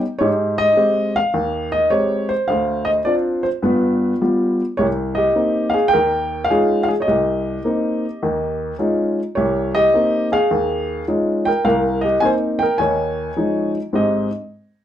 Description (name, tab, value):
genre	solo jazz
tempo	105 BPM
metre	4/4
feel	swing 67% on 8ths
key	Ab major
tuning	A4 = 440 Hz
part	warm upright piano	solo	0.0-14.3 s	C2 to Ab5	-16 LUFS	equal	none
room	wet small room reverb, RT60 0.5 s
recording	heard from further back in the room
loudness	-16 LUFS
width	side -10 dB against mid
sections	0.0-4.8 A section; 4.8-13.9 B section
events	none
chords	0.2 Abmaj7; 2.5 Dm7; 3.6 G7; 4.8 Cm7; 5.9 Eb9sus4; 7.1 Cm7; 8.2 Eb9sus4; 9.3 Cm7; 10.5 Eb9sus4; 11.6 Cm7; 12.8 Eb9sus4; 13.9 Abmaj7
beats	| 0.18 0.75 1.33 1.90 | 2.47 3.05 3.62 4.19 | 4.77 5.34 5.91 6.49 | 7.06 7.63 8.20 8.78 | 9.35 9.92 10.49 11.07 | 11.64 12.21 12.78 13.36 | 13.93